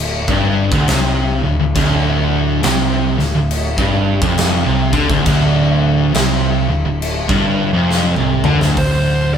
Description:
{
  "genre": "stoner and doom metal",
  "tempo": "68 BPM",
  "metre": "4/4",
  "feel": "swing 62% on 8ths",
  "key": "D minor",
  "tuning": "A4 = 440 Hz",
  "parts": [
    { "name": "crunchy overdriven guitar", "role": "riff", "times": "0.0-8.8 s", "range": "D2 to D3", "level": "-20 LUFS", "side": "equal", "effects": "none" },
    { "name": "thick fuzz guitar", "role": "riff", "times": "0.0-9.4 s", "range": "D2 to D3", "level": "-19 LUFS", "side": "left 3 dB", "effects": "distortion" },
    { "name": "thick fuzz guitar", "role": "riff", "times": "0.0-9.4 s", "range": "D2 to D3", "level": "-20 LUFS", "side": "right 8 dB", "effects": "distortion" },
    { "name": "overdriven picked electric bass", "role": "bass", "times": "0.0-9.4 s", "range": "D1 to D2", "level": "-21 LUFS", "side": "equal", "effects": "none" },
    { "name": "big rock drum kit", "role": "drums", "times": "0.0-9.0 s", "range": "crash cymbal, hi-hat, kick drum, snare drum, toms", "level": "-19 LUFS", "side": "left 1 dB", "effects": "none" },
    { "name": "fuzz lead guitar", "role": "melody", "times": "8.8-9.4 s", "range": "C5 to D5", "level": "-19 LUFS", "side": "right 1 dB", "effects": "distortion" }
  ],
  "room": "moderate studio reverb, RT60 0.6 s",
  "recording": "band playing live in one room",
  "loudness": "-13 LUFS",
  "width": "side -8 dB against mid",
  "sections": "0.0-8.8 A section",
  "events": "drum fill 7.9-8.8",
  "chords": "0.0 Dm; 8.8 D7(no3)"
}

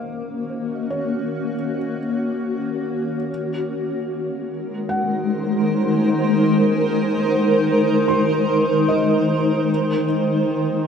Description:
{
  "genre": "ambient",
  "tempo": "free time",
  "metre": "none",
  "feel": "none",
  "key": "unclear",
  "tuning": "A4 = 443 Hz",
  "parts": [
    { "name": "granular cloud pad", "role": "sustained chords", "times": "0.0-10.9 s", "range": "Eb3 to C5", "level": "-18 LUFS", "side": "equal", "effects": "built-in reverb" },
    { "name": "felt-muted upright piano", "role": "arpeggios", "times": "0.0-10.9 s", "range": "C5 to C6", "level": "-30 LUFS", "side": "equal", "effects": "tape echo" }
  ],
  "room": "wet huge ambient reverb, RT60 7.3 s",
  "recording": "none",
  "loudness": "-18 LUFS",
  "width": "side -7 dB against mid",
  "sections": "0.0-10.9 A section",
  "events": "fade-in on ambient pad 0.0-10.9; fade-in on felt piano 0.0-10.9",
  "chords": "0.0 Ebm7; 3.3 Ab7/Eb; 9.7 Eb5"
}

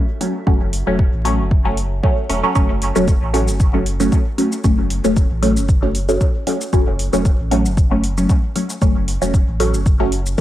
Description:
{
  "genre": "dub techno",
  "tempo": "115 BPM",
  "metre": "4/4",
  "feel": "swing 54% on 16ths",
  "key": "F# minor",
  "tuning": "A4 = 440 Hz",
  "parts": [
    { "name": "warbly tape-like pad", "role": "sustained chords", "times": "0.0-2.5 s", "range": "F#4 to E5", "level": "-39 LUFS", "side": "right 2 dB", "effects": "none" },
    { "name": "filtered dub chord stab", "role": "stabs", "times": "0.2-10.4 s", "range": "F#3 to C#4", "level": "-19 LUFS", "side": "equal", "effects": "phaser, sidechain pumping, dub echo" },
    { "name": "electronic hi-hat and shaker", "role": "drums", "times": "0.2-10.4 s", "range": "none", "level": "-29 LUFS", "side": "equal", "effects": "none" },
    { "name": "warm sub bass", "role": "bass", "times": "0.5-10.4 s", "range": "E1 to A1", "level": "-21 LUFS", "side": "equal", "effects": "sidechain pumping" },
    { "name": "electronic kick drum", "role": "drums", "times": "0.5-10.4 s", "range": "none", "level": "-16 LUFS", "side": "equal", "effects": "none" }
  ],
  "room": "light reverb",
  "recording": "vinyl crackle",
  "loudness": "-14 LUFS",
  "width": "side -13 dB against mid",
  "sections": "0.0-2.6 A section; 2.6-10.4 A section",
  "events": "none",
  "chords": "0.0 F#m"
}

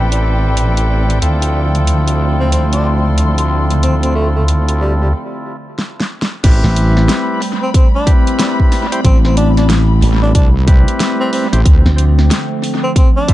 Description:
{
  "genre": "glitch hop",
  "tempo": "92 BPM",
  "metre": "4/4",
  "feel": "swing 62% on 16ths",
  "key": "A minor",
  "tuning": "A4 = 438 Hz",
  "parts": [
    { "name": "warbly tape-like pad", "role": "sustained chords", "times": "0.0-13.3 s", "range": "D3 to G4", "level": "-21 LUFS", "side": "equal", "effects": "chorus, built-in reverb, sidechain pumping" },
    { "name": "percussive tonewheel organ", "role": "stabs", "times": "0.0-13.3 s", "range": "C4 to C5", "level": "-21 LUFS", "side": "equal", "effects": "overdrive, sidechain pumping, analog delay" },
    { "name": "wobble bass", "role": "bass", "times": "0.0-11.8 s", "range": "A1 to D2", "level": "-13 LUFS", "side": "equal", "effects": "chorus" },
    { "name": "muted studio string section", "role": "texture", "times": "0.0-13.3 s", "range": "A4 to C6", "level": "-25 LUFS", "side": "left 3 dB", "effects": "sidechain pumping" },
    { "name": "pop drum kit", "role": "drums", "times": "0.1-13.3 s", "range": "crash cymbal, hi-hat, snare drum", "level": "-20 LUFS", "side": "equal", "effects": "analog delay" },
    { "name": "breathy tenor saxophone", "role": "melody", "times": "2.4-13.3 s", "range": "G3 to D4", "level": "-21 LUFS", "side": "left 1 dB", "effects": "analog delay" },
    { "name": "electronic kick drum", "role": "drums", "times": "6.4-13.3 s", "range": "none", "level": "-10 LUFS", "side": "equal", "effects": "none" },
    { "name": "slap bass", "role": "bass", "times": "6.6-12.3 s", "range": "A1 to D2", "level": "-10 LUFS", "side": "equal", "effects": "none" }
  ],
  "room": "light reverb",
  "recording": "echo-heavy mix, nothing above 10.5 kHz",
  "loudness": "-10 LUFS",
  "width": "side -15 dB against mid",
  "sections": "0.0-6.4 A section; 6.4-13.3 B section",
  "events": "filter sweep on ambient pad 0.0-6.4; break 5.1-6.4; drum fill 5.8-6.4; drop 6.4-13.3",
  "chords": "0.0 Am7; 1.2 Dm7; 6.4 Am7; 11.7 Dm7"
}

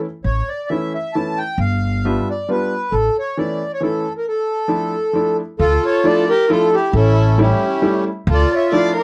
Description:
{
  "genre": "musette waltz",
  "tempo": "135 BPM",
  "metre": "3/4",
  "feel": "swing 54% on 8ths",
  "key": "D harmonic minor",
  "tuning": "A4 = 437 Hz",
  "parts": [
    { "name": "bright upright piano", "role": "accompaniment", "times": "0.0-9.0 s", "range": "E3 to F4", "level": "-23 LUFS", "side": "equal", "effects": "none" },
    { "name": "accordion", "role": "melody", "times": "0.2-9.0 s", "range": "C#4 to A5", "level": "-21 LUFS", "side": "equal", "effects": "none" },
    { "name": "upright bass", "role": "bass", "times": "0.2-3.1, 5.6-8.4 s", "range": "G1 to D2", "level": "-19 LUFS", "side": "equal", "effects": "none" },
    { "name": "dark violin", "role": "second line", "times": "5.6-9.0 s", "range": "E4 to D5", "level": "-24 LUFS", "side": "equal", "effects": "none" }
  ],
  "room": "light reverb",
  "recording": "dry, close 1970s-style studio recording",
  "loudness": "-18 LUFS",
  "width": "mono",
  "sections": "0.0-5.6 A section; 5.6-9.0 A section",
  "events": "none",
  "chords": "0.0 A; 1.6 G7; 2.9 A; 4.2 Dmadd9; 6.9 A7; 8.3 Dmadd9"
}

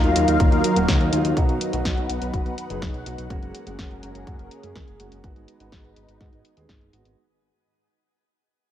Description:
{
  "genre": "italo disco",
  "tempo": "124 BPM",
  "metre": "4/4",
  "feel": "straight",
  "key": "unclear",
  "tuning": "A4 = 440 Hz",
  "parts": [
    { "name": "lush unison pad", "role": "sustained chords", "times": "0.0-7.2 s", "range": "Gb3 to F#5", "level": "-25 LUFS", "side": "left 1 dB", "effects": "chorus, phaser, shimmer reverb" },
    { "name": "dark concert grand piano", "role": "stabs", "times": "0.0-7.1 s", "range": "Gb3 to Ab4", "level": "-30 LUFS", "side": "right 4 dB", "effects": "low-pass filter, tape echo, shimmer reverb" },
    { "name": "fat analog bass", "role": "bass", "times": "0.0-7.2 s", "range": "Eb1 to Ab2", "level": "-27 LUFS", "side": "equal", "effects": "tape echo" },
    { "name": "house drum kit", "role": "drums", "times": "0.0-7.2 s", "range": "hi-hat, snare drum", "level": "-29 LUFS", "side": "left 1 dB", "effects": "low-pass filter on hats, low-pass filter on toms, low-pass filter on snare" },
    { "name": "electronic kick drum", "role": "drums", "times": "0.4-6.8 s", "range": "none", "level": "-22 LUFS", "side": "equal", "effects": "none" }
  ],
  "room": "light reverb, digital ambience",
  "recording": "none",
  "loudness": "-19 LUFS",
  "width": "side -11 dB against mid",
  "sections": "0.0-7.2 A section",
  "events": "fade-out 0.0-7.2; filter sweep on grand piano 0.0-7.2",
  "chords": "0.0 Ebmadd9; 1.4 B; 3.3 Gbadd9; 5.2 Abm7"
}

